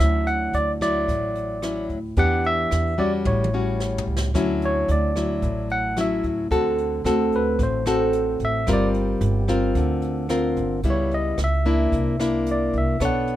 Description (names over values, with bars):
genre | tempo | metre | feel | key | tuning
bossa nova | 111 BPM | 4/4 | straight | D major | A4 = 440 Hz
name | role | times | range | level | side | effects
barky tine electric piano | melody | 0.0-13.4 s | B4 to F#5 | -25 LUFS | equal | none
nylon-string guitar | accompaniment | 0.0-13.4 s | A2 to C#5 | -23 LUFS | left 1 dB | none
upright bass | bass | 0.0-13.4 s | G1 to E2 | -25 LUFS | right 1 dB | none
jazz brush drum kit | drums | 0.0-13.4 s | hi-hat, kick drum, rim click, snare drum, toms | -30 LUFS | equal | none
room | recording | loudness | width
light reverb | minimal, uncompressed stereo recording | -20 LUFS | side -13 dB against mid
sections
0.0-4.3 A section; 4.3-13.4 B section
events
drum fill 3.3-4.3; tine electric piano solo 4.3-13.4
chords
0.0 Dmaj9; 2.2 Em7; 3.3 A6; 4.3 Dmaj9; 6.5 D7; 8.7 Gm7; 10.8 C#m7b5; 11.9 C9